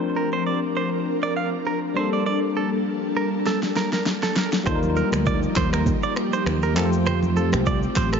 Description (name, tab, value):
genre	afrobeats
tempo	100 BPM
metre	4/4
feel	swing 55% on 16ths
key	unclear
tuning	A4 = 440 Hz
part	barky tine electric piano	accompaniment	0.0-8.2 s	F3 to C5	-26 LUFS	left 5 dB	analog chorus
part	ethereal airy pad	sustained chords	0.0-8.2 s	F3 to Bb4	-27 LUFS	equal	ensemble chorus, built-in reverb
part	direct-recorded clean electric guitar	riff	0.2-8.2 s	A4 to F5	-27 LUFS	right 6 dB	spring reverb, digital delay
part	deep house drum kit	drums	3.5-8.2 s	finger snaps, handclaps, kick drum, rim click, shaker, snare drum	-26 LUFS	equal	overdrive
part	fingered electric bass	bass	4.7-8.2 s	A1 to F2	-24 LUFS	right 1 dB	none
part	congas	percussion	4.7-8.1 s	none	-30 LUFS	right 4 dB	none
room	light reverb, digital ambience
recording	nothing above 7.5 kHz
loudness	-20 LUFS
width	side -6 dB against mid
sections	0.0-4.7 A section; 4.7-8.2 B section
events	drum fill 3.5-4.7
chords	0.0 Bbadd9/F; 2.0 Gmadd9; 4.7 Ebadd9; 6.8 Fadd9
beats	0.46 1.06 1.66 | 2.26 2.86 3.46 4.06 | 4.66 5.26 5.86 6.46 | 7.06 7.66